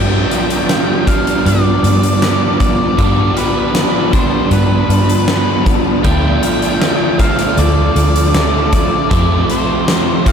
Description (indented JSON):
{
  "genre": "rock, shoegaze and dream pop",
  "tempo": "78 BPM",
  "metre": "4/4",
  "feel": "straight",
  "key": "G mixolydian",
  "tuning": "A4 = 440 Hz",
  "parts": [
    { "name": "octave-fuzz lead guitar", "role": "melody", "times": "0.0-10.3 s", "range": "B4 to G5", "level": "-20 LUFS", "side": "equal", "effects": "distortion, tape echo" },
    { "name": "twelve-string electric guitar", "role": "arpeggios", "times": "0.0-10.3 s", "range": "F3 to D4", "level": "-25 LUFS", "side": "right 5 dB", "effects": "none" },
    { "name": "biting overdriven guitar", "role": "riff", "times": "0.0-10.3 s", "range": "F2 to D4", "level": "-19 LUFS", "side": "left 10 dB", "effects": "ensemble chorus" },
    { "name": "overdriven electric guitar", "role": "riff", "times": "0.0-10.3 s", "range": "F2 to G4", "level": "-17 LUFS", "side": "right 7 dB", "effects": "reverse reverb" },
    { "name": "vintage muted fingered electric bass", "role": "bass", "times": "0.0-9.4 s", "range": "D2 to G2", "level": "-15 LUFS", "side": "equal", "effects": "none" },
    { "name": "huge arena drum kit", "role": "drums", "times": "0.3-10.3 s", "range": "hi-hat, kick drum, snare drum", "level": "-17 LUFS", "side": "left 1 dB", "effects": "none" }
  ],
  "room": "moderate huge ambient reverb, RT60 8.1 s",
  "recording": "dreamy mix soaked in reverb",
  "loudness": "-11 LUFS",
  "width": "side -7 dB against mid",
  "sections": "0.0-10.3 A section",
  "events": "none",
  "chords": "0.0 G7; 6.0 Dm7; 9.1 F"
}